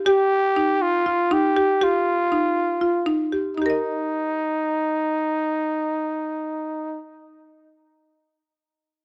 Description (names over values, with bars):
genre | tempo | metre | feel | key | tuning
progressive instrumental, progressive | 239 BPM (eighths) | 7/8 | straight | Eb major | A4 = 438 Hz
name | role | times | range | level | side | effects
growling trumpet | melody | 0.1-7.0 s | Eb4 to G4 | -24 LUFS | equal | tape echo
buzzing marimba with hard mallets | arpeggios | 0.1-7.1 s | Eb4 to Eb5 | -24 LUFS | equal | none
room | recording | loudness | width
small room reverb | dry, close 1970s-style studio recording | -22 LUFS | mono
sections
0.1-3.6 A section; 3.6-7.1 B section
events
none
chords
0.0 Ebadd9; 3.6 Eb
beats
| 0.07 0.32 0.56 0.81 1.06 1.31 1.56 | 1.81 2.07 2.32 2.57 2.82 3.07 3.32 | 3.57 3.82 4.07 4.32 4.58 4.83 5.08 | 5.33 5.58 5.83 6.08 6.34 6.59 6.84